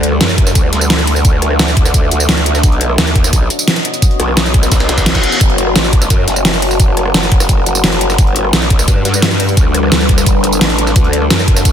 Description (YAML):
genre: dark technical drum and bass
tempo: 173 BPM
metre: 4/4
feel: straight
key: unclear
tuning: A4 = 439 Hz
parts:
  - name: deep dark ambient pad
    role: sustained chords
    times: 0.0-11.7 s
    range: G3 to A5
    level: -18 LUFS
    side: left 2 dB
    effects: chorus, built-in reverb, sidechain pumping
  - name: growl bass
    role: bass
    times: 0.0-11.7 s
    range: F#1 to G2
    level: -15 LUFS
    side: equal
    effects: chorus, overdrive, sidechain pumping
  - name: breakbeat sampler-style drum kit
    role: drums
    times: 0.0-11.7 s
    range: hi-hat, snare drum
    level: -23 LUFS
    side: right 1 dB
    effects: high-pass filter on hats, high-pass filter on snare, high-pass filter on room
  - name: dubstep drum kit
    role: drums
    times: 0.0-11.7 s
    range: hi-hat, rim click, snare drum, tambourine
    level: -15 LUFS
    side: right 1 dB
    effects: overdrive
  - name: electronic kick drum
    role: drums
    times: 0.4-11.7 s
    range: none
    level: -11 LUFS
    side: equal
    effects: none
  - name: reverse cymbal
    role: sound effects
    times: 4.8-5.4 s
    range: none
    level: -19 LUFS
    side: left 1 dB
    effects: none
room: digital ambience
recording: dense, heavily limited modern master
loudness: -9 LUFS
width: side -9 dB against mid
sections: 0.0-11.7 A section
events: reverse cymbal 4.8-5.4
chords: 0.0 D; 2.6 B; 5.4 F#m; 8.2 G; 11.0 D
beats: 0.21 0.55 0.90 | 1.25 1.59 1.94 2.29 | 2.63 2.98 3.33 3.67 | 4.02 4.37 4.72 5.06 | 5.41 5.76 6.10 6.45 | 6.80 7.14 7.49 7.84 | 8.18 8.53 8.88 9.22 | 9.57 9.92 10.27 10.61 | 10.96 11.30 11.65